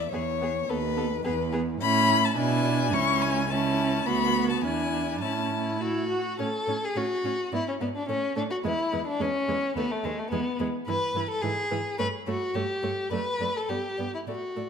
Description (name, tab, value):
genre	quick classical-period movement for string quartet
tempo	107 BPM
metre	2/4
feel	straight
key	A major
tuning	A4 = 439 Hz
part	warm violin	melody	0.0-14.7 s	B4 to C#6	-29 LUFS	left 7 dB	none
part	dark cello	bass	0.0-14.6 s	C#2 to B2	-32 LUFS	right 6 dB	none
part	rich violin	second line	0.1-14.7 s	G#3 to B4	-29 LUFS	left 2 dB	none
part	rich viola	accompaniment	0.1-14.6 s	E3 to F#4	-32 LUFS	right 3 dB	none
room	moderate scoring stage reverb, RT60 1.6 s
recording	none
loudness	-25 LUFS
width	side -6 dB against mid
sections	0.0-6.4 A section; 6.4-14.7 A section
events	none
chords	0.0 E; 0.7 B7/D#; 1.2 E5; 1.8 A; 2.4 E7/B; 2.9 A/C#; 4.1 Bm/D; 4.6 E7; 5.2 A; 7.5 G#dim; 8.1 A; 8.6 E; 9.8 B7/D#; 10.3 E; 10.9 Em; 11.4 E/G#; 12.0 A7/G; 13.1 D (rootless); 13.7 G